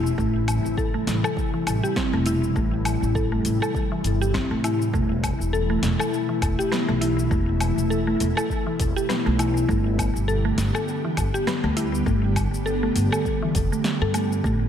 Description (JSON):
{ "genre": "organic downtempo", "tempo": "101 BPM", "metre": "4/4", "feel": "swing 57% on 16ths", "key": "unclear", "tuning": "A4 = 440 Hz", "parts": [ { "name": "ethereal airy pad", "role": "sustained chords", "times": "0.0-14.7 s", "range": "B2 to G4", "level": "-27 LUFS", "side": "left 1 dB", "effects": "ensemble chorus, built-in reverb, sidechain pumping" }, { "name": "mallet-like synth pluck", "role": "arpeggios", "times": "0.0-14.5 s", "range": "E3 to A4", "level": "-26 LUFS", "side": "equal", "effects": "chorus, ping-pong delay" }, { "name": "upright bass", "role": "bass", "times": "0.0-14.7 s", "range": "E1 to A2", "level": "-25 LUFS", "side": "equal", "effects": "tube saturation, sidechain pumping" }, { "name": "deep house drum kit", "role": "drums", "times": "0.1-14.6 s", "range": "cabasa, hi-hat, snare drum, woodblock", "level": "-31 LUFS", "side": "left 1 dB", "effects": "overdrive" }, { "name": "electronic kick drum", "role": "drums", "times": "0.2-14.6 s", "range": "none", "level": "-27 LUFS", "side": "equal", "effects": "overdrive" } ], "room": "moderate lush hall reverb, RT60 2.0 s", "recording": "dreamy mix soaked in reverb", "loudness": "-20 LUFS", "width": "side -9 dB against mid", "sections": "0.0-4.9 A section; 4.9-14.7 B section", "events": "filter sweep on synth pluck 0.0-4.9", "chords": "0.0 Am; 4.9 Esus4; 9.7 G" }